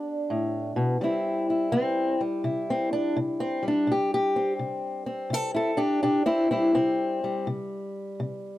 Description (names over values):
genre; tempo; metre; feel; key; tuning
acoustic country blues, solo or duo; 83 BPM; 4/4; swing 65% on 8ths; unclear; A4 = 441 Hz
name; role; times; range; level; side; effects
fingerpicked old ladder-braced acoustic guitar; solo; 0.0-8.6 s; G2 to D5; -24 LUFS; left 1 dB; none
room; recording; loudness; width
little or no reverb; dry, close 1970s-style studio recording; -24 LUFS; side -15 dB against mid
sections
0.0-8.6 A section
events
steel-string acoustic guitar solo 0.0-8.6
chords
0.0 G; 1.0 C